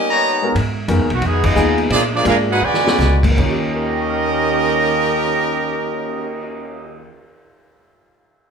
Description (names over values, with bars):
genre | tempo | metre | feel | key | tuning
jazz, big band swing | 154-181 BPM | 4/4 | swing 63% on 8ths | unclear | A4 = 439 Hz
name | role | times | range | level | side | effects
warm trombone section | second line | 0.0-7.1 s | B2 to G4 | -24 LUFS | right 3 dB | none
clear trumpet section | stabs | 0.1-0.5 s | Cb4 to Bb5 | -18 LUFS | left 2 dB | none
warm grand piano | accompaniment | 0.4-7.9 s | Eb2 to Bb6 | -22 LUFS | left 1 dB | none
upright bass | bass | 0.6-7.1 s | Cb2 to Bb2 | -20 LUFS | equal | none
vintage drum kit | drums | 0.6-6.4 s | crash cymbal, cymbal swell, hi-hat, kick drum, ride cymbal, snare drum | -24 LUFS | equal | none
clear trumpet section | melody | 1.1-7.1 s | Ab3 to G#5 | -19 LUFS | right 2 dB | none
room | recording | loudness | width
moderate large studio reverb, RT60 0.9 s | band playing live in one room | -15 LUFS | side -6 dB against mid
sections
0.6-3.4 A section; 3.4-6.5 B section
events
break 0.0-0.6; slowing down 0.6-3.4; band accent 1.4; drum fill 2.6-3.0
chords
0.0 Eb7b13; 0.6 Abm7; 1.2 Fm7b5; 1.9 Bb7; 2.6 E13; 3.4 Eb9